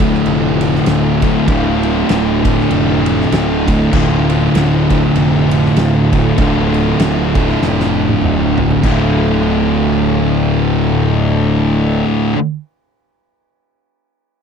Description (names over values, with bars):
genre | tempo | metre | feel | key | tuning
stoner and doom metal | 98 BPM | 4/4 | swing 58% on 8ths | D minor | A4 = 438 Hz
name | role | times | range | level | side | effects
thick fuzz guitar | riff | 0.0-12.4 s | D2 to D3 | -16 LUFS | left 9 dB | distortion
thick fuzz guitar | riff | 0.0-12.4 s | D2 to D3 | -18 LUFS | right 10 dB | distortion
thick fuzz guitar | riff | 0.0-12.4 s | D2 to F4 | -18 LUFS | right 1 dB | distortion
fuzz picked electric bass | bass | 0.0-12.0 s | D1 to F1 | -19 LUFS | right 1 dB | overdrive
oversized low-tuned drum kit | drums | 0.0-9.0 s | crash cymbal, kick drum, ride cymbal, snare drum, toms | -20 LUFS | right 1 dB | none
room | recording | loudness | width
little or no reverb | dry, close 1970s-style studio recording | -11 LUFS | side -6 dB against mid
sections
0.0-8.8 A section; 8.8-11.3 B section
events
drum fill 7.6-8.8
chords
0.0 Dm